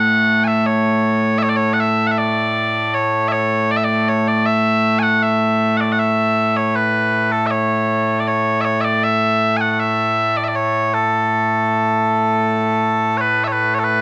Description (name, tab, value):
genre	scottish traditional, Scottish pipe music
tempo	79 BPM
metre	3/4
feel	straight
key	A major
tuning	A4 = 440 Hz
part	mellow small bagpipes	solo	0.0-14.0 s	A2 to G#5	-17 LUFS	equal	none
room	moderate studio reverb, RT60 0.6 s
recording	none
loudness	-17 LUFS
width	mono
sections	0.0-13.6 A section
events	none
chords	none